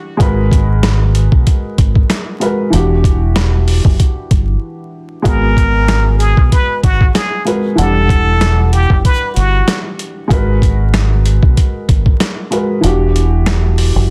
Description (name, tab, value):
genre	hip hop, boom-bap hip-hop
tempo	95 BPM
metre	4/4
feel	swing 54% on 16ths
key	G# minor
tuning	A4 = 439 Hz
part	warm upright piano	accompaniment	0.0-14.1 s	E3 to F#5	-21 LUFS	equal	cassette tape
part	deep dub fingered electric bass	bass	0.2-14.1 s	E1 to B1	-15 LUFS	equal	none
part	boom bap sampler-style drum kit	drums	0.2-13.9 s	hi-hat, kick drum, rim click, snare drum	-16 LUFS	equal	none
part	trumpet with plunger mute	melody	5.3-9.8 s	F#4 to B4	-20 LUFS	equal	digital delay
room	little or no reverb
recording	dense, heavily limited modern master, vinyl crackle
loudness	-13 LUFS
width	mono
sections	0.0-14.1 A section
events	break 4.6-5.3; kick muted 12.8-14.1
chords	0.2 G#m9; 2.7 Em9; 5.3 G#m9; 7.8 Em9; 10.3 G#m9; 12.8 Em9